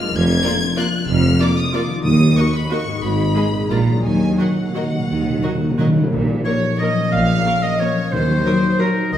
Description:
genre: classical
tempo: 161-203 BPM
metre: 3/4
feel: rubato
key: Eb minor, Bb minor from 6.1 s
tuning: A4 = 439 Hz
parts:
  - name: rich chamber violin section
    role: melody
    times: 0.0-8.9 s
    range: Gb5 to Ab6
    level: -26 LUFS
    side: left 3 dB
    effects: none
  - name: concert harp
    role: arpeggios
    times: 0.0-9.2 s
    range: Ab2 to Cb5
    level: -22 LUFS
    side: left 4 dB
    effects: none
  - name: mellow tuba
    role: bass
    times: 0.1-5.4 s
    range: F1 to Eb2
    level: -24 LUFS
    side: right 2 dB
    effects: none
  - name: rich chamber double bass section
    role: bass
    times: 0.1-9.2 s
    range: F1 to Eb2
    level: -24 LUFS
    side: right 2 dB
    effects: none
  - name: rich studio cello section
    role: bass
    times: 0.1-9.2 s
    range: Eb2 to Eb3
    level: -23 LUFS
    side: right 2 dB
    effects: none
  - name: warm chamber violin section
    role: second line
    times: 0.4-9.2 s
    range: Bb4 to F5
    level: -26 LUFS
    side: equal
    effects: none
  - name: rich chamber viola section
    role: accompaniment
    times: 0.4-8.9 s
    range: Gb3 to Bb4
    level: -27 LUFS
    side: right 1 dB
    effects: none
  - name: timpani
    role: percussion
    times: 2.0-8.6 s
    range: Bb2 to Eb3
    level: -22 LUFS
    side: equal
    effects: none
  - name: clear oboe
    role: second line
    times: 6.4-9.2 s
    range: Bb4 to F5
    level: -22 LUFS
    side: right 1 dB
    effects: none
room: wet recital hall reverb, RT60 1.6 s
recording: recorded in a church or concert hall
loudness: -15 LUFS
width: side -10 dB against mid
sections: 0.0-6.1 A section; 6.1-9.2 B section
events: timpani fill 4.0-6.1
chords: 0.1 Bb7/F; 2.0 Ebm; 3.0 Abm; 3.7 Bb7; 4.0 Ebm; 6.1 Bbm; 8.1 Ebm

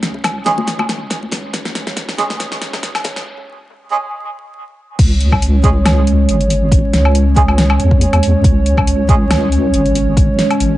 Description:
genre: deep dubstep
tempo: 139 BPM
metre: 4/4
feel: swing 55% on 16ths, half-time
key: unclear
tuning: A4 = 440 Hz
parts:
  - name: dark analog pad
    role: sustained chords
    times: 0.0-10.8 s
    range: G#3 to C#5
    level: -18 LUFS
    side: right 1 dB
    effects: chorus
  - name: deep soft wobble bass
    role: bass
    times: 0.0-10.8 s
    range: G#1 to E2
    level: -14 LUFS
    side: equal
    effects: chorus
  - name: deep house drum kit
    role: drums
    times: 0.0-10.7 s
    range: crash cymbal, hi-hat, snare drum, woodblock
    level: -19 LUFS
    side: left 1 dB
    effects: none
  - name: bongos and congas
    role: percussion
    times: 0.1-3.1 s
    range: none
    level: -26 LUFS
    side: left 3 dB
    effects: dub echo
  - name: electronic kick drum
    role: drums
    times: 0.2-10.3 s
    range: none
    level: -13 LUFS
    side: equal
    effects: high-pass filter on kick, high-pass filter on room
  - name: melodica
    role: stabs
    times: 0.5-9.1 s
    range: G#3 to G#4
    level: -21 LUFS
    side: right 4 dB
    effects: dub echo
room: light reverb, digital ambience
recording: vinyl crackle, high-pass filter, nothing above 10.4 kHz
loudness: -12 LUFS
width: side -15 dB against mid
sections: 0.0-5.0 A section; 5.0-10.8 B section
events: build-up 0.0-5.0; drum fill 0.0-3.3; filter sweep on analog synth pad 0.0-5.0; filter sweep 0.0-5.0; break 3.3-5.0; drop 5.0-10.8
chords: 0.0 C#5

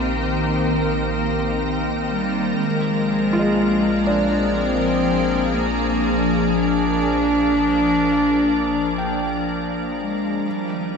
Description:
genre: ambient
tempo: 61 BPM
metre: 4/4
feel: straight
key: Bb mixolydian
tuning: A4 = 436 Hz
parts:
  - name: warm cello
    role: melody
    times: 0.0-11.0 s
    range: G3 to D4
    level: -22 LUFS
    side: equal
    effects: ping-pong delay
  - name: soft additive organ-like pad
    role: sustained chords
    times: 0.0-11.0 s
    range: Eb3 to Bb4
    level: -21 LUFS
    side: left 1 dB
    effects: ensemble chorus, built-in reverb
  - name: felt-muted upright piano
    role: arpeggios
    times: 0.0-11.0 s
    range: Ab3 to G5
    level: -28 LUFS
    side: equal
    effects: ping-pong delay
  - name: warm sub bass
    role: bass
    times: 0.0-11.0 s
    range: Bb1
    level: -31 LUFS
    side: equal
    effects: none
room: wet lush hall reverb, RT60 2.7 s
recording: dreamy mix soaked in reverb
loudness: -18 LUFS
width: side -5 dB against mid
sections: 0.0-11.0 A section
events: fade-out on sub bass 0.0-11.0; fade-out 7.8-11.0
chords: 0.0 Eb6/Bb; 2.6 Bb7; 10.5 Eb/Bb

